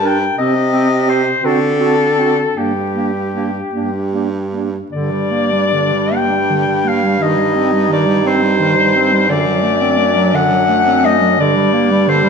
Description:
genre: classical, lyrical piece for single-reed quartet.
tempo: 48-60 BPM (dotted quarters).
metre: 6/8.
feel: rubato.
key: G minor.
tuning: A4 = 439 Hz.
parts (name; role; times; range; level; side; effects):
mellow soprano saxophone; melody; 0.0-12.3 s; G4 to G5; -16 LUFS; left 6 dB; none.
mellow alto saxophone; second line; 0.0-12.3 s; D4 to Bb4; -21 LUFS; right 9 dB; none.
clear clarinet; accompaniment; 0.0-12.3 s; D3 to D4; -19 LUFS; equal; none.
clear baritone saxophone; bass; 0.0-12.3 s; F#2 to D3; -19 LUFS; right 4 dB; none.
room: wet recital hall reverb, RT60 1.3 s.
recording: none.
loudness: -12 LUFS.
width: side -6 dB against mid.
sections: 0.0-4.9 A section; 4.9-12.3 B section.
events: none.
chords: 0.4 Cm; 1.4 D7; 2.6 Gm; 7.2 Cm/G; 9.3 D7/F#; 11.4 Gm.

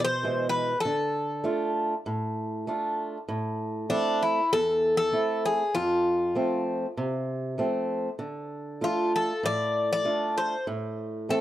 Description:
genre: greek folk, Greek bouzouki band.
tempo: 98 BPM.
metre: 4/4.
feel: straight.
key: unclear.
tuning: A4 = 439 Hz.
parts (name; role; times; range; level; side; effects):
Greek bouzouki; melody; 0.0-11.4 s; D4 to D5; -26 LUFS; left 2 dB; none.
fingerpicked swing-style acoustic guitar; accompaniment; 0.0-11.4 s; E2 to F4; -28 LUFS; right 2 dB; none.
room: small room ambience.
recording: dry, close 1970s-style studio recording.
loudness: -25 LUFS.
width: side -13 dB against mid.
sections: 0.0-11.4 A section.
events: none.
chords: 0.0 E; 0.8 Dm; 3.3 Am; 5.7 F; 8.2 Dm; 10.7 Am.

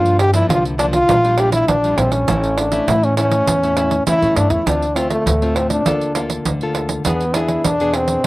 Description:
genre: samba and choro.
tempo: 101 BPM.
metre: 4/4.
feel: straight.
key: D minor.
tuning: A4 = 439 Hz.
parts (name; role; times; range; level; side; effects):
clear French horn; melody; 0.0-8.3 s; A3 to G4; -17 LUFS; equal; none.
nylon-string guitar; accompaniment; 0.0-8.2 s; G2 to A4; -23 LUFS; left 2 dB; slapback echo.
upright bass; bass; 0.0-8.2 s; A1 to C#3; -21 LUFS; equal; none.
pandeiro; percussion; 0.1-8.3 s; none; -22 LUFS; right 4 dB; none.
room: little or no reverb.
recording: recorded outdoors, with no room sound.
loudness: -14 LUFS.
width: side -18 dB against mid.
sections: 0.0-4.7 A section; 4.7-8.3 B section.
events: none.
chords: 0.0 Gm7; 1.1 Bb6; 2.3 A; 4.7 Dm7; 5.9 Bbmaj7/D; 7.1 E7.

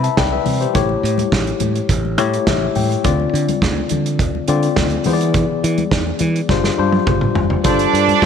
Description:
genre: disco.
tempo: 104 BPM.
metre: 4/4.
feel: straight.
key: unclear.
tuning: A4 = 437 Hz.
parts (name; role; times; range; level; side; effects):
tine electric piano; accompaniment; 0.0-8.3 s; C3 to B5; -19 LUFS; left 9 dB; slow stereo tremolo.
modern bright fingered electric bass; bass; 0.0-8.3 s; F#1 to E3; -20 LUFS; right 3 dB; none.
warm soul drum kit; drums; 0.0-8.3 s; hi-hat, kick drum, snare drum, toms; -20 LUFS; right 2 dB; none.
congas; percussion; 0.2-8.3 s; none; -27 LUFS; left 10 dB; none.
clear studio string section; second line; 7.7-8.3 s; D4 to D5; -14 LUFS; right 13 dB; none.
room: light reverb, small room reverb.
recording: 1960s-style stereo with parts hard left and right.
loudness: -14 LUFS.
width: side -7 dB against mid.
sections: 0.0-7.7 A section.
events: tine electric piano fill 1.9-3.0; drum fill 6.5-7.7.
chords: 0.0 Cmaj7; 0.7 A7; 3.0 Dm7; 5.1 E7; 6.5 G7sus4; 7.7 G9sus4.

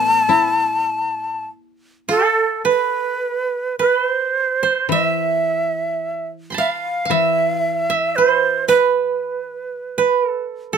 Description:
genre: japanese traditional, Japanese chamber music.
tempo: 48-59 BPM.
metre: 4/4.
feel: rubato.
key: A hirajoshi.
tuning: A4 = 440 Hz.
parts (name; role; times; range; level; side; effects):
breathy bright shakuhachi; melody; 0.0-10.8 s; A4 to A5; -19 LUFS; right 1 dB; none.
koto; second line; 0.0-10.8 s; A4 to C6; -19 LUFS; right 6 dB; none.
koto; accompaniment; 0.0-10.2 s; A2 to E4; -25 LUFS; left 5 dB; none.
room: light reverb.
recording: close, detailed microphones.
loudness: -16 LUFS.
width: side -7 dB against mid.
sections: 0.0-2.7 A section; 2.7-10.8 B section.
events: none.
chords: none.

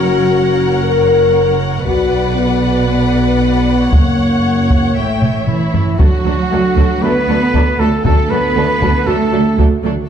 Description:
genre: cinematic, epic orchestral film score.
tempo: 116 BPM.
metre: 4/4.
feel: straight.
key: F# major, D major from 6.0 s.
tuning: A4 = 440 Hz.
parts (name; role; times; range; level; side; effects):
rich symphonic violin section; melody; 0.0-9.6 s; E4 to G5; -23 LUFS; left 5 dB; none.
warm symphonic violin section; second line; 0.0-9.9 s; D4 to F#5; -26 LUFS; left 3 dB; none.
rich symphonic viola section; accompaniment; 0.0-9.9 s; F#3 to C#5; -22 LUFS; right 1 dB; none.
dark French horn section; sustained chords; 0.0-9.6 s; E3 to A#4; -16 LUFS; left 4 dB; none.
rich symphonic double bass section; bass; 0.0-9.9 s; F#1 to D2; -20 LUFS; right 4 dB; none.
warm symphonic cello section; bass; 0.0-9.6 s; F#2 to B3; -20 LUFS; right 5 dB; none.
taiko ensemble; drums; 1.9-10.1 s; none; -15 LUFS; equal; none.
warm trumpet; stabs; 5.5-9.6 s; E4 to B4; -19 LUFS; right 2 dB; none.
dark trombone section; sustained chords; 6.0-10.1 s; D3 to A3; -24 LUFS; right 4 dB; none.
room: wet recital hall reverb, RT60 1.4 s.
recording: dark, warm production.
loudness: -11 LUFS.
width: side -8 dB against mid.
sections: 0.0-6.0 A section; 6.0-10.1 B section.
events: drum fill 5.2-6.0.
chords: 0.0 F#; 1.9 Bm; 3.9 F#; 5.0 A7; 6.0 D.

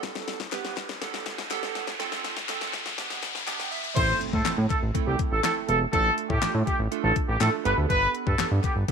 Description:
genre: dance-pop.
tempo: 122 BPM.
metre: 4/4.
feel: straight.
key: A minor.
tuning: A4 = 441 Hz.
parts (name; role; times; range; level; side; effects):
warm analog keys; accompaniment; 0.0-8.9 s; A3 to B5; -33 LUFS; right 15 dB; chorus, sidechain pumping.
pop drum kit; drums; 0.0-8.9 s; crash cymbal, handclaps, hi-hat, kick drum, snare drum; -30 LUFS; left 4 dB; none.
riser and impact; sound effects; 0.0-5.9 s; none; -34 LUFS; equal; none.
group handclap; percussion; 0.5-8.8 s; none; -40 LUFS; left 14 dB; none.
warm horn section; melody; 4.0-8.7 s; G4 to C5; -26 LUFS; right 1 dB; sidechain pumping, tape echo.
fat analog bass; bass; 4.0-8.8 s; E1 to A2; -25 LUFS; equal; sidechain pumping.
room: light reverb.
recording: 1960s-style stereo with parts hard left and right, high-pass filter.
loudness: -24 LUFS.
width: side -6 dB against mid.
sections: 0.0-4.0 A section; 4.0-8.9 B section.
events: build-up 0.0-4.0; drum fill 0.0-4.0; riser 0.0-4.0; filter sweep 0.0-4.0; synth keys fill 3.0-4.0; drop 4.0-8.9; impact 4.0-5.9.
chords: 0.0 Gadd9; 2.0 F; 3.0 G; 4.0 Am; 5.9 Dm/A; 7.7 Gadd9.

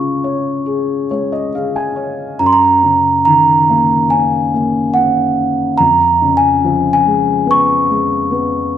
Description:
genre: children's music, lullaby.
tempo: 70 BPM.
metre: 4/4.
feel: straight.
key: unclear.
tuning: A4 = 440 Hz.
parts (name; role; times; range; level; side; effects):
large celesta; melody; 0.0-8.7 s; Gb5 to Db6; -12 LUFS; right 2 dB; none.
felt-muted upright piano; accompaniment; 0.0-8.8 s; F2 to Ab5; -16 LUFS; left 3 dB; none.
room: wet recital hall reverb, RT60 1.6 s.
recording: dark, warm production.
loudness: -11 LUFS.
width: side -10 dB against mid.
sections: 0.0-2.4 A section; 2.4-8.8 B section.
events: felt piano fill 0.7-2.4.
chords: 0.0 Db; 2.4 Gb6; 5.8 Db7/F.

